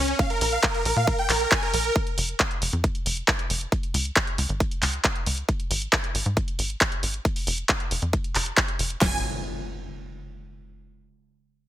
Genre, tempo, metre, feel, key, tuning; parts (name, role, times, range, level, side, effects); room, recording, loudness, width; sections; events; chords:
uplifting trance; 136 BPM; 4/4; straight; A4 = 437 Hz
supersaw chords; melody; 0.0-1.9, 9.0-9.2 s; Db4 to Ab5; -25 LUFS; right 1 dB; phaser, cassette tape, sidechain pumping, digital delay
tight sequencer bass; bass; 0.0-9.2 s; F1 to Bb2; -28 LUFS; equal; sidechain pumping
punchy analog drum machine; drums; 0.1-9.0 s; handclaps, hi-hat; -24 LUFS; equal
big-room dance drum kit; drums; 0.2-9.1 s; crash cymbal, kick drum, snare drum; -25 LUFS; equal; overdrive
impact; sound effects; 9.0-10.8 s; -35 LUFS; left 1 dB
little or no reverb; -22 LUFS; side -13 dB against mid
0.0-9.0 A section; 9.0-10.8 B section
filter sweep on analog synth bass 0.0-9.0
0.2 Bb5; 2.0 N.C.; 3.7 Db5; 5.5 N.C.